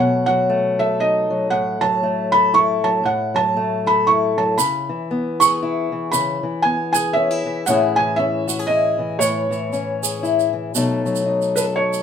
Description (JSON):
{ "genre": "acoustic folk duo or small band", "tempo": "117 BPM", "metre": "3/4", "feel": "swing 60% on 8ths", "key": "F# dorian", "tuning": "A4 = 440 Hz", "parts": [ { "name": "felt-muted upright piano", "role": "melody", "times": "0.0-12.0 s", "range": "B4 to C#6", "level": "-19 LUFS", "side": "right 2 dB", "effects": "none" }, { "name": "fingerpicked acoustic archtop guitar", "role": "accompaniment", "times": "0.0-12.0 s", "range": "A2 to A4", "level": "-20 LUFS", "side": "left 3 dB", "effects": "none" }, { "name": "tube shaker", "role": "percussion", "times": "4.6-12.0 s", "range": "none", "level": "-25 LUFS", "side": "right 9 dB", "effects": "none" } ], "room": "moderate studio reverb, RT60 0.8 s", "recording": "minimal, uncompressed stereo recording", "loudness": "-17 LUFS", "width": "side -8 dB against mid", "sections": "0.0-10.7 A section; 10.7-12.0 B section", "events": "felt piano solo 10.7-12.0", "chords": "0.0 B7; 1.5 F#m7/A; 4.6 C#m7; 7.7 Amaj7; 10.7 B7" }